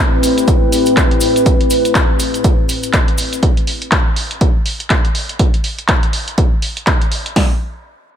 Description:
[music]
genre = deep house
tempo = 122 BPM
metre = 4/4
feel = swing 59% on 16ths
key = A minor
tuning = A4 = 440 Hz
[part]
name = warbly tape-like pad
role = sustained chords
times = 0.1-3.4 s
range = A2 to B4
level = -16 LUFS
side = left 1 dB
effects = chorus, built-in reverb, sidechain pumping
[part]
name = punchy analog drum machine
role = drums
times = 0.2-7.3 s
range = handclaps, hi-hat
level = -19 LUFS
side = equal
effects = none
[part]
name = cabasa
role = percussion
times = 0.2-3.4 s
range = none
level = -26 LUFS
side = left 3 dB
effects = none
[part]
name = punchy analog drum machine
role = drums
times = 0.5-7.5 s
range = hi-hat, kick drum, snare drum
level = -14 LUFS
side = equal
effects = none
[sound]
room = light reverb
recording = none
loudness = -12 LUFS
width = side -9 dB against mid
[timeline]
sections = 0.0-7.4 A section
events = none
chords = 0.0 Am7; 3.4 N.C.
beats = 0.48 0.97 | 1.46 1.95 2.44 2.94 | 3.43 3.92 4.41 4.90 | 5.39 5.89 6.38 6.87 | 7.36

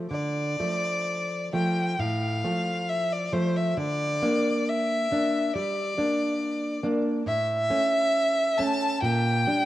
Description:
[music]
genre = romantic duo for violin and classical guitar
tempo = 60-70 BPM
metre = 4/4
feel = rubato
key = D minor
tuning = A4 = 441 Hz
[part]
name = nylon-string guitar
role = accompaniment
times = 0.0-9.7 s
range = A2 to D4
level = -27 LUFS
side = equal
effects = cassette tape
[part]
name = clear violin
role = melody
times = 0.1-9.7 s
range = C5 to A5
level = -26 LUFS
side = left 1 dB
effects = none
[sound]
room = light reverb, studio ambience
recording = home recording on cassette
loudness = -24 LUFS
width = side -14 dB against mid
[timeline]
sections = 0.1-9.7 A section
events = none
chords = 0.1 Dm; 3.8 Gm/D (rootless); 7.3 A; 9.0 Gm/Bb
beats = | 0.11 1.07 1.99 2.88 | 3.78 4.68 5.55 6.40 | 7.26 8.13 9.01

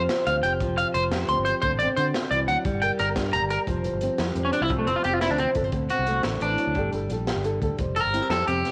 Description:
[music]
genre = highlife guitar band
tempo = 117 BPM (dotted quarters)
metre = 12/8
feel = straight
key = F major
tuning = A4 = 441 Hz
[part]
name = flamenco guitar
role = accompaniment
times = 0.0-8.7 s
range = C3 to D5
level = -30 LUFS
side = equal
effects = cassette tape
[part]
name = fingered electric bass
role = bass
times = 0.0-8.6 s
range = E1 to D3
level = -32 LUFS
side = equal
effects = none
[part]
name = crunchy breakbeat drum kit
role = drums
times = 0.1-8.7 s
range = hi-hat, kick drum, snare drum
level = -34 LUFS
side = equal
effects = none
[part]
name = electric guitar at the edge of break-up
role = arpeggios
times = 0.3-8.7 s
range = A3 to C6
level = -27 LUFS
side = equal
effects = cassette tape, tape echo
[sound]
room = light reverb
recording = home recording on cassette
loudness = -25 LUFS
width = mono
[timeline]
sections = 0.0-3.7 A section; 3.7-8.7 B section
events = clean electric guitar solo 3.7-8.7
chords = 0.0 Fsus2; 1.6 D7; 2.6 Gm; 3.7 Fsus2; 5.7 D7; 6.8 Gmadd9; 7.8 Fsus2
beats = 0.09 0.60 1.11 | 1.63 2.14 2.65 3.16 | 3.67 4.19 4.70 5.21 | 5.73 6.24 6.76 7.27 | 7.78 8.30

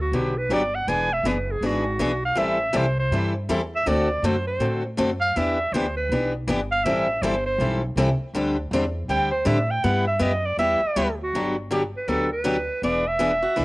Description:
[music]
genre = acoustic string swing (jazz manouche)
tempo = 161 BPM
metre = 4/4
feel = swing 62% on 8ths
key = G major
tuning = A4 = 445 Hz
[part]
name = breathy clarinet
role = melody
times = 0.0-13.6 s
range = F#4 to G#5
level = -24 LUFS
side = right 1 dB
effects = cassette tape
[part]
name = upright bass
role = bass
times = 0.0-13.6 s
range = E1 to A2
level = -28 LUFS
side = equal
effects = none
[part]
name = picked steel-string acoustic guitar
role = accompaniment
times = 0.1-13.6 s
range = D3 to A4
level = -24 LUFS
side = left 1 dB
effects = cassette tape, plate reverb
[part]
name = picked steel-string acoustic guitar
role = second line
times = 13.4-13.6 s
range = E4 to F#4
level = -30 LUFS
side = right 3 dB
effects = cassette tape
[sound]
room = moderate small room reverb, RT60 0.5 s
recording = home recording on cassette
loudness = -21 LUFS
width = side -21 dB against mid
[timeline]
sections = 0.0-11.3 A section; 11.3-13.6 B section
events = clarinet solo 0.0-11.3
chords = 0.0 Gmaj7; 0.9 E7; 2.4 Am7; 3.9 D7; 5.4 Em7; 6.9 Am7; 8.3 D7sus4; 9.8 G6; 11.3 Gmaj7; 12.8 E7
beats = 0.13 0.50 | 0.87 1.25 1.62 1.99 | 2.37 2.74 3.12 3.49 | 3.86 4.24 4.61 4.98 | 5.36 5.73 6.10 6.48 | 6.85 7.22 7.60 7.97 | 8.34 8.72 9.09 9.46 | 9.84 10.21 10.58 10.96 | 11.33 11.70 12.07 12.45 | 12.82 13.20 13.57

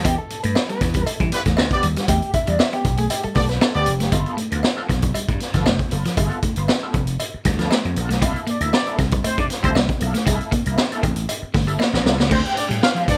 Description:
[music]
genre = funk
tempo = 117 BPM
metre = 4/4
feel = straight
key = unclear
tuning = A4 = 441 Hz
[part]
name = electric guitar at the edge of break-up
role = accompaniment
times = 0.0-13.1 s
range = Bb3 to G5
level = -30 LUFS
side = equal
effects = wah, tremolo
[part]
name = clean electric guitar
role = riff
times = 0.0-13.1 s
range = F3 to C4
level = -30 LUFS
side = equal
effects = spring reverb
[part]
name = vintage slap bass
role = bass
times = 0.0-13.2 s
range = F1 to E3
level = -25 LUFS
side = equal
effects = none
[part]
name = raw garage drum kit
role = drums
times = 0.0-13.2 s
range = crash cymbal, hi-hat, kick drum, snare drum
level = -23 LUFS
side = equal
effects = none
[part]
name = cowbell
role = percussion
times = 0.1-11.9 s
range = none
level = -32 LUFS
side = equal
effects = none
[part]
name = warm horn section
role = second line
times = 1.3-3.9, 8.5-13.2 s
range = G3 to F5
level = -24 LUFS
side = equal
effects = none
[sound]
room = light reverb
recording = none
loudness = -20 LUFS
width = mono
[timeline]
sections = 0.0-4.1 A section; 4.1-12.3 B section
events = clean electric guitar solo 0.0-4.1; drum fill 11.8-12.3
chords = 0.0 Em; 4.1 G9; 8.2 C13; 12.3 Dm7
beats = | 0.04 0.55 1.06 1.57 | 2.09 2.60 3.11 3.62 | 4.13 4.64 5.15 5.66 | 6.17 6.69 7.20 7.71 | 8.22 8.73 9.24 9.76 | 10.27 10.78 11.29 11.80 | 12.31 12.82

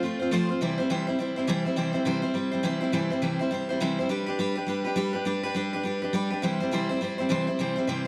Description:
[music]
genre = rock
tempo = 206 BPM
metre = 4/4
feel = swing 61% on 8ths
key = C major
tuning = A4 = 440 Hz
[part]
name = picked steel-string acoustic guitar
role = solo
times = 0.0-8.1 s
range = C3 to C5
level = -28 LUFS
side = equal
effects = none
[sound]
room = moderate echo chamber reverb, RT60 2.1 s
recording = none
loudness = -28 LUFS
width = mono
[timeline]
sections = 0.0-8.1 A section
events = none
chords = 0.0 F; 0.6 C; 4.1 G; 6.4 C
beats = 0.02 0.31 | 0.60 0.90 1.19 1.48 | 1.77 2.06 2.35 2.64 | 2.93 3.22 3.51 3.81 | 4.10 4.39 4.68 4.97 | 5.26 5.55 5.84 6.14 | 6.43 6.72 7.01 7.30 | 7.59 7.88

